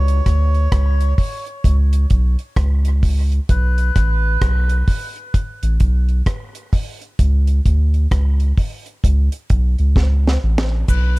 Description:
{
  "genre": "dub reggae",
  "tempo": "65 BPM",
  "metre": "4/4",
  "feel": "swing 61% on 16ths",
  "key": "unclear",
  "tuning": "A4 = 443 Hz",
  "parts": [
    { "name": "melodica", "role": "melody", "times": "0.0-4.4, 10.9-11.2 s", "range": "B4 to C#5", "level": "-27 LUFS", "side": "equal", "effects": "dub echo" },
    { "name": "soft dub sub bass", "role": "bass", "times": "0.0-11.2 s", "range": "A1 to D2", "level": "-15 LUFS", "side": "equal", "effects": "none" },
    { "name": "deep reggae drum kit", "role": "drums", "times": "0.1-11.1 s", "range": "crash cymbal, hi-hat, kick drum, rim click, snare drum", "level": "-18 LUFS", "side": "equal", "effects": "none" },
    { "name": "cabasa", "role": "percussion", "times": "10.9-11.2 s", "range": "none", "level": "-37 LUFS", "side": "right 8 dB", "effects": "none" }
  ],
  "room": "small room ambience",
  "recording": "echo-heavy mix",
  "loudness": "-15 LUFS",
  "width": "side -22 dB against mid",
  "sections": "0.0-11.2 A section",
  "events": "break 0.0-10.9; drum fill 10.0-10.9",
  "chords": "0.0 N.C.; 3.5 Asus2; 7.2 N.C."
}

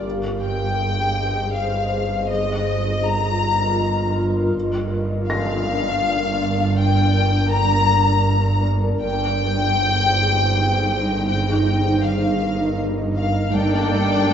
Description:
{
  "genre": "cinematic",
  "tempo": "80 BPM",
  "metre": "3/4",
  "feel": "straight",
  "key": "unclear",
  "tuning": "A4 = 440 Hz",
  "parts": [
    { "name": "rich studio violin section", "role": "melody", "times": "0.0-14.3 s", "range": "Eb5 to Bb5", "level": "-22 LUFS", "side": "left 4 dB", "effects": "none" },
    { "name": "granular cloud pad", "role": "sustained chords", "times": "0.0-14.3 s", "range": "D4 to Eb5", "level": "-24 LUFS", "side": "equal", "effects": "built-in reverb" },
    { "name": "rich studio cello section", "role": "bass", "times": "0.0-14.3 s", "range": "G2", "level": "-24 LUFS", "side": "right 1 dB", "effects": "none" },
    { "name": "felt-muted upright piano", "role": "texture", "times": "0.0-9.1 s", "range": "F5 to Bb6", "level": "-33 LUFS", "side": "left 3 dB", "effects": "none" },
    { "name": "rich studio double bass section", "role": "bass", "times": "0.1-14.3 s", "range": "G1", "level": "-24 LUFS", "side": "right 3 dB", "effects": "none" },
    { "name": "rich studio violin section", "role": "second line", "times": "13.5-14.3 s", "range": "A4 to D5", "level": "-25 LUFS", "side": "left 3 dB", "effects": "none" },
    { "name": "rich studio cello section", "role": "riff", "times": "13.5-14.3 s", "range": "G2 to G3", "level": "-23 LUFS", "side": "right 2 dB", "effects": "none" },
    { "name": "rich studio viola section", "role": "accompaniment", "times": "13.6-14.3 s", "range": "Bb3 to D4", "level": "-22 LUFS", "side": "equal", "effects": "none" }
  ],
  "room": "wet scoring stage reverb, RT60 1.6 s",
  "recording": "nothing above 7.8 kHz",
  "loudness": "-17 LUFS",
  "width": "side -8 dB against mid",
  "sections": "0.0-13.5 A section",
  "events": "none",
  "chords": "0.0 Ab/G; 2.3 Ebadd9/G; 4.5 Gm7; 9.0 Ab/G; 11.3 Ebadd9/G; 13.5 Gmadd9"
}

